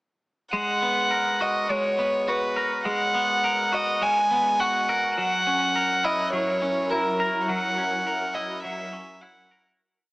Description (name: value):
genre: post-rock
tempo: 104 BPM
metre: 4/4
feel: straight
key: G# minor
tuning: A4 = 439 Hz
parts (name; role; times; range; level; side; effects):
- twangy electric guitar; arpeggios; 0.5-9.8 s; F#3 to A#4; -27 LUFS; equal; lush chorus, analog delay
- rich violin; melody; 0.6-9.7 s; A#4 to G#5; -23 LUFS; equal; none
- shimmering ambient pad; sustained chords; 6.2-9.8 s; F#3 to A#4; -34 LUFS; equal; chorus, built-in reverb
room: moderate huge ambient reverb, RT60 4.8 s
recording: small speaker sound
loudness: -22 LUFS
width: side -24 dB against mid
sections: 0.5-9.8 A section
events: fade-out 7.5-9.8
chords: 0.5 G#m9; 5.2 F#7